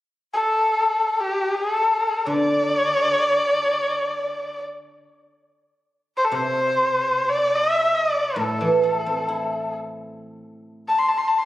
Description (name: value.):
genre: chinese traditional, Chinese chamber ensemble.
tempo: free time.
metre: none.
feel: none.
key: A yu mode.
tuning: A4 = 440 Hz.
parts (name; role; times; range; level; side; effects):
warm erhu; melody; 0.3-11.5 s; G4 to C6; -20 LUFS; left 1 dB; none.
guzheng; accompaniment; 2.3-11.1 s; A2 to E4; -25 LUFS; right 2 dB; none.
room: light reverb.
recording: recorded on a phone in the room, studio reverb, compression.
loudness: -19 LUFS.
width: side -14 dB against mid.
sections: 0.0-11.5 A section.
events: none.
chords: none.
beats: free time.